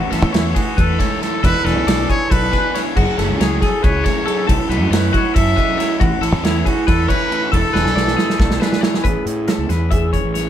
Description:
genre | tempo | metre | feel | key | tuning
math rock and midwest emo | 276 BPM (eighths) | 7/8 | straight | A major | A4 = 441 Hz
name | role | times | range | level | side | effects
electric guitar through a small old amp | accompaniment | 0.0-10.5 s | E2 to G#4 | -23 LUFS | right 3 dB | spring reverb
twelve-string electric guitar | arpeggios | 0.0-10.5 s | F#4 to E5 | -24 LUFS | left 6 dB | none
crunchy overdriven guitar | riff | 0.1-9.0 s | E3 to G#4 | -26 LUFS | left 1 dB | none
fuzz fingered electric bass | bass | 0.1-10.5 s | E1 to A2 | -20 LUFS | equal | overdrive
loose indie drum kit | drums | 0.1-10.4 s | crash cymbal, hi-hat, kick drum, ride cymbal, snare drum | -18 LUFS | equal | none
clear trumpet | melody | 0.4-8.8 s | E4 to E5 | -22 LUFS | equal | none
room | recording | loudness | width
light reverb | band playing live in one room | -14 LUFS | side -10 dB against mid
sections
0.0-9.0 A section; 9.0-10.5 B section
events
drum fill 7.7-9.0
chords
0.0 A6; 1.4 E7sus4; 3.0 F#m9; 4.5 B9sus4; 6.0 A6; 7.5 E7sus4; 9.0 Amaj9

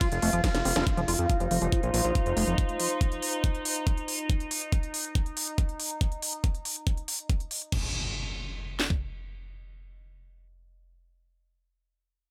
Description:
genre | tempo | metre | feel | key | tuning
psychedelic trance | 140 BPM | 4/4 | straight | unclear | A4 = 436 Hz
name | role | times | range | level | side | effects
overtone-sweeping drone | sustained chords | 0.0-6.0 s | Eb4 to F4 | -37 LUFS | equal | chorus, built-in reverb, sidechain pumping
liquid acid bass | riff | 0.0-2.6 s | F3 to F4 | -34 LUFS | equal | chorus, sidechain pumping, delay
drum and bass drum kit | drums | 0.0-9.0 s | kick drum, snare drum | -29 LUFS | equal | none
techno drum kit | drums | 0.0-7.8 s | crash cymbal, hi-hat, ride cymbal, snare drum | -34 LUFS | equal | none
fat analog bass | bass | 0.1-2.5 s | F1 to F2 | -31 LUFS | equal | none
warbly tape-like pad | texture | 1.5-4.3 s | F4 to C6 | -37 LUFS | equal | chorus, built-in reverb, sidechain pumping
impact | sound effects | 7.7-10.9 s | none | -42 LUFS | equal | none
room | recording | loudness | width
light reverb | none | -29 LUFS | mono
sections
0.9-7.7 A section; 7.7-11.2 B section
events
drum fill 0.4-0.9; band accent 0.8; filter sweep on acid bass 0.9-2.6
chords
0.0 F5; 7.7 N.C.

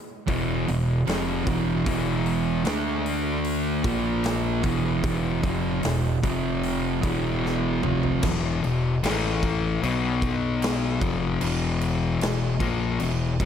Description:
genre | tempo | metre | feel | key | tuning
stoner and doom metal | 76 BPM | 4/4 | straight | unclear | A4 = 440 Hz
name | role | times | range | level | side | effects
thick fuzz guitar | riff | 0.3-13.5 s | E2 to D4 | -25 LUFS | left 5 dB | distortion
thick fuzz guitar | riff | 0.3-8.2 s | E2 to D4 | -27 LUFS | right 11 dB | distortion
fuzz fingered electric bass | bass | 0.3-13.5 s | E1 to D2 | -31 LUFS | equal | overdrive
big rock drum kit | drums | 0.3-13.5 s | crash cymbal, hi-hat, kick drum, snare drum, toms | -30 LUFS | right 1 dB | none
room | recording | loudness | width
light reverb, small room ambience | none | -22 LUFS | side -8 dB against mid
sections
0.0-8.2 A section; 8.2-13.5 B section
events
drum fill 7.4-8.2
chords
0.0 E5; 2.7 D5; 3.9 A#5; 4.7 E5; 6.2 F5; 7.0 E5; 9.0 A5; 9.8 B5; 11.0 E5

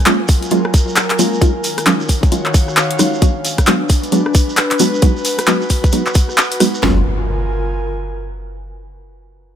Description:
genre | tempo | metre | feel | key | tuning
UK garage, two-step garage | 133 BPM | 4/4 | swing 61% on 16ths | F# major | A4 = 440 Hz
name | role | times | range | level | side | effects
airy breathy pad | texture | 0.0-8.6 s | D#3 to G#5 | -22 LUFS | left 1 dB | chorus, sidechain pumping
punchy chord stab | stabs | 0.1-7.0 s | F#3 to F#4 | -17 LUFS | equal | chorus, ping-pong delay
punchy analog drum machine | drums | 0.1-6.7 s | handclaps, hi-hat, rim click | -17 LUFS | left 1 dB | overdrive
shekere | percussion | 0.1-6.8 s | none | -24 LUFS | right 3 dB | none
garage drum kit | drums | 0.3-7.0 s | kick drum, snare drum, toms | -13 LUFS | equal | none
saturated sub bass | bass | 6.8-7.0 s | F#1 | -16 LUFS | equal | none
impact | sound effects | 6.8-8.6 s | none | -22 LUFS | equal | none
room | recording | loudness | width
light reverb, digital ambience | none | -12 LUFS | side -9 dB against mid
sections
0.0-6.8 A section; 6.8-8.6 B section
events
filter sweep on synth stab 0.0-6.8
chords
0.0 F#maj9; 1.4 D#m11; 3.2 Bm6; 5.0 G#m7; 6.8 F#maj9

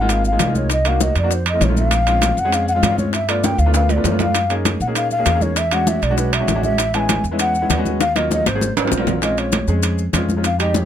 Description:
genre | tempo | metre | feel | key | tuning
Afro-Cuban jazz | 197 BPM | 4/4 | straight | unclear | A4 = 440 Hz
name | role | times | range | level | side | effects
breathy mellow bansuri | melody | 0.0-10.9 s | B4 to A5 | -21 LUFS | left 1 dB | plate reverb
clear grand piano | accompaniment | 0.0-10.9 s | Gb3 to Ab4 | -23 LUFS | left 1 dB | none
upright bass | bass | 0.0-10.8 s | Ab1 to Bb2 | -20 LUFS | right 1 dB | none
bongos | percussion | 0.1-10.9 s | none | -25 LUFS | left 8 dB | none
congas | percussion | 0.1-10.9 s | none | -25 LUFS | left 1 dB | none
maracas | percussion | 0.1-10.9 s | none | -29 LUFS | left 7 dB | none
timbales | percussion | 0.1-10.8 s | none | -23 LUFS | right 6 dB | none
room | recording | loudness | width
light reverb | close, detailed microphones | -15 LUFS | side -10 dB against mid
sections
0.0-9.2 A section; 9.2-10.9 B section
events
drum fill 3.4-4.3, 8.0-9.2; bansuri solo 9.2-10.9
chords
0.0 Db6 (rootless); 0.7 Cm7b5; 1.3 F7; 1.9 Bbm9; 3.1 G9; 4.3 Gb6; 5.6 E13; 6.8 Amaj9; 8.0 Ebm9; 8.6 Ab13; 9.2 Bbm7

